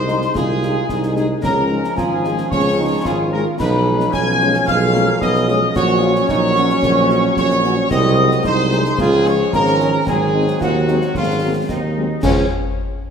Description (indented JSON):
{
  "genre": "military-style march for wind band",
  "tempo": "111 BPM",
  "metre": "2/4",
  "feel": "straight",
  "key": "Db major",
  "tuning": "A4 = 437 Hz",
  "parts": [
    { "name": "mellow trumpet section", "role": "melody", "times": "0.0-12.5 s", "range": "Db4 to Ab5", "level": "-23 LUFS", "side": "equal", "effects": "none" },
    { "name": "large flute ensemble", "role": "second line", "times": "0.0-12.5 s", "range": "Db5 to Ab6", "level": "-22 LUFS", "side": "left 1 dB", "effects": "none" },
    { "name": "clear trombone section", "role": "sustained chords", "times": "0.0-12.5 s", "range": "F3 to Eb4", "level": "-24 LUFS", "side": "right 1 dB", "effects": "none" },
    { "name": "mellow tuba", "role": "bass", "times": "0.0-12.5 s", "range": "Ab1 to Eb2", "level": "-19 LUFS", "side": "right 2 dB", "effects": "none" },
    { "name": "clear euphonium", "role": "second line", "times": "0.1-11.8 s", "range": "Ab3 to Gb4", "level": "-23 LUFS", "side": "right 1 dB", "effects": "none" },
    { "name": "dark French horn section", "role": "accompaniment", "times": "0.1-12.5 s", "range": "F3 to Gb4", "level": "-26 LUFS", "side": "left 4 dB", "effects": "none" },
    { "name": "concert snare drum, concert bass drum and clash cymbals", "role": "drums", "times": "0.1-12.5 s", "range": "none", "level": "-26 LUFS", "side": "left 1 dB", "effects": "none" }
  ],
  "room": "wet scoring stage reverb, RT60 1.9 s",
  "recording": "none",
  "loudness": "-14 LUFS",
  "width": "side -7 dB against mid",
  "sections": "0.0-12.2 A section",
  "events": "none",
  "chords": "0.0 Ab/C; 1.4 Db; 3.6 Db7/Cb; 5.8 Gb/Bb; 7.9 Ab7/C; 9.0 Db; 10.1 Ab7; 12.2 Db"
}